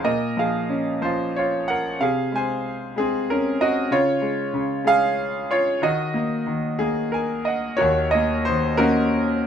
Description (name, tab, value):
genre	classical, lyrical solo piano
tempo	62 BPM (dotted quarters)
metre	6/8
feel	rubato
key	Eb dorian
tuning	A4 = 439 Hz
part	bright concert grand piano	solo	0.0-9.5 s	Eb2 to Ab5	-20 LUFS	equal	none
room	light reverb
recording	minimal, uncompressed stereo recording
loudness	-20 LUFS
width	side -8 dB against mid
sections	0.0-7.8 A section; 7.8-9.5 A section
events	grand piano fill 6.8-7.8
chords	0.0 Bbm; 2.0 Bbm11/C; 3.9 Db; 5.8 Ebm; 7.8 Ebm7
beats	| 0.03 1.03 | 2.00 2.96 | 3.90 4.85 | 5.81 6.80 | 7.79 8.78